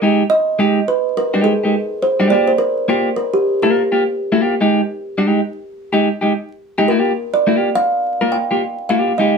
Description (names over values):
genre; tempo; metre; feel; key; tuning
funk; 105 BPM; 4/4; swing 60% on 16ths; unclear; A4 = 445 Hz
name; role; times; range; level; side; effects
clean electric guitar; accompaniment; 0.0-9.4 s; Ab3 to Bb4; -15 LUFS; equal; none
kalimba; melody; 0.3-9.4 s; G4 to G5; -17 LUFS; right 2 dB; none
room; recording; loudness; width
moderate studio reverb, RT60 0.5 s; vinyl crackle; -14 LUFS; side -5 dB against mid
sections
0.0-9.4 A section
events
kalimba solo 0.0-9.4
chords
0.0 Abmaj7(no3); 2.3 Gm7; 4.6 Ebadd11/Ab; 6.9 Gm7